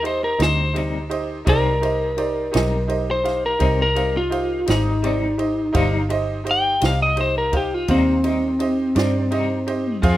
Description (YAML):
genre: slow blues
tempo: 56 BPM (dotted quarters)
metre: 12/8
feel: straight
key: C minor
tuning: A4 = 444 Hz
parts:
  - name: lightly driven lead guitar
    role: melody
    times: 0.0-10.0 s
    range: C4 to G5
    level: -21 LUFS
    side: left 1 dB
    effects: none
  - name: bright upright piano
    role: accompaniment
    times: 0.0-10.2 s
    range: Eb4 to F5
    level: -26 LUFS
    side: right 4 dB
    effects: none
  - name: vintage muted fingered electric bass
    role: bass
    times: 0.0-10.2 s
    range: G1 to G2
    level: -24 LUFS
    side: equal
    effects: none
  - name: compact cocktail drum kit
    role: drums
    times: 0.0-10.2 s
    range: kick drum, ride cymbal, snare drum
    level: -24 LUFS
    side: right 1 dB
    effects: none
  - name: clean electric guitar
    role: accompaniment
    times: 0.4-10.2 s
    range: C3 to Ab4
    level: -29 LUFS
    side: left 5 dB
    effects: tremolo
room: studio reverb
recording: rough home demo mix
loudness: -18 LUFS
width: side -14 dB against mid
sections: 0.0-10.2 A section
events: lead electric guitar solo 0.0-10.2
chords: 0.0 Cm